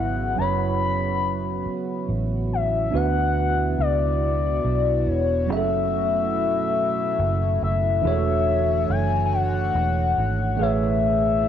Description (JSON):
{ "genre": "slow six-eight R&B", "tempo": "47 BPM (dotted quarters)", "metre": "6/8", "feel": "straight", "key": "unclear", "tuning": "A4 = 440 Hz", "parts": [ { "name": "gliding portamento lead", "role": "melody", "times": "0.0-11.5 s", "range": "C#5 to B5", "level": "-24 LUFS", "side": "left 7 dB", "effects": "chorus, cassette tape" }, { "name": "tine electric piano", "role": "accompaniment", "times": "0.0-11.5 s", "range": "E3 to E5", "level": "-27 LUFS", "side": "right 9 dB", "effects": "fast stereo tremolo, cassette tape" }, { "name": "chorused pulse-width pad", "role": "sustained chords", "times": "0.0-11.5 s", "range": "B2 to C#5", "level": "-30 LUFS", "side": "equal", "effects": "cassette tape" }, { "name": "vintage muted fingered electric bass", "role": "bass", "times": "0.0-11.5 s", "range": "E1 to D2", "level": "-25 LUFS", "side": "right 1 dB", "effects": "none" } ], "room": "light reverb, digital ambience", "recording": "home recording on cassette", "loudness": "-20 LUFS", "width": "side -9 dB against mid", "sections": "0.0-2.9 A section; 2.9-11.5 B section", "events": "none", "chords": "0.0 F#7sus4; 2.9 Dmaj13; 5.5 F#m7; 8.0 E13sus4; 10.6 Amaj9" }